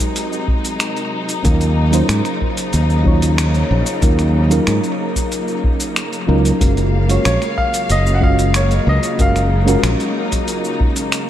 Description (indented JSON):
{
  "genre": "sunset chillout",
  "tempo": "93 BPM",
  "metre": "4/4",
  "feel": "straight",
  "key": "unclear",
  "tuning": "A4 = 441 Hz",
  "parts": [
    { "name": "mellow FM electric piano", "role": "accompaniment", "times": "0.0-11.3 s", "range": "Gb3 to Eb5", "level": "-20 LUFS", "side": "equal", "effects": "chorus, auto-pan, dub echo" },
    { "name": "rich studio string section", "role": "sustained chords", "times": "0.0-11.3 s", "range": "C3 to F5", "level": "-23 LUFS", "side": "left 1 dB", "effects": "none" },
    { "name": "dusty soul sampler-style drum kit", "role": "drums", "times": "0.0-11.3 s", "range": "cabasa, finger snaps, hi-hat", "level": "-24 LUFS", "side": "equal", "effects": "overdrive, dub echo" },
    { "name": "electronic kick drum", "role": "drums", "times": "0.0-10.9 s", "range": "none", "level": "-17 LUFS", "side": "equal", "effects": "none" },
    { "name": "modern bright fingered electric bass", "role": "bass", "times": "1.4-9.9 s", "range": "Gb1 to Ab2", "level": "-15 LUFS", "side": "equal", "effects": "none" },
    { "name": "bright grand piano", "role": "melody", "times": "7.3-11.3 s", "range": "Db5 to Gb5", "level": "-22 LUFS", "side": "left 1 dB", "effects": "dub echo" }
  ],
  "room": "light reverb, digital ambience",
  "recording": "echo-heavy mix",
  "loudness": "-14 LUFS",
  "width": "side -11 dB against mid",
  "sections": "0.0-11.3 A section",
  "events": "none",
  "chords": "0.0 Ab7; 1.4 Ebm7; 6.6 Gbmaj7",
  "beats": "0.16 0.80 | 1.45 2.09 2.74 3.38 | 4.03 4.67 5.32 5.96 | 6.61 7.25 7.90 8.54 | 9.19 9.83 10.48 11.12"
}